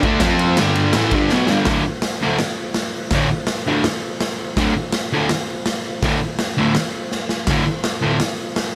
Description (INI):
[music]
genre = garage rock duo or trio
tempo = 165 BPM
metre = 4/4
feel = straight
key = unclear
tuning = A4 = 443 Hz
[part]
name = fuzz guitar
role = riff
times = 0.0-8.2 s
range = D2 to F4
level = -20 LUFS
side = equal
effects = distortion
[part]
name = raw garage drum kit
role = drums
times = 0.0-8.7 s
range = crash cymbal, hi-hat, kick drum, ride cymbal, snare drum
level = -24 LUFS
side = equal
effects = none
[sound]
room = light reverb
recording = none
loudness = -20 LUFS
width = mono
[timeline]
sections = 0.0-1.7 A section; 1.7-8.8 B section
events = drum fill 1.3-1.7, 7.1-7.5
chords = 0.2 F5; 0.6 G5; 1.7 D5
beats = | 0.22 0.58 0.95 1.31 | 1.67 2.03 2.40 2.76 | 3.12 3.48 3.85 4.21 | 4.57 4.94 5.30 5.66 | 6.03 6.39 6.75 7.12 | 7.48 7.84 8.21 8.57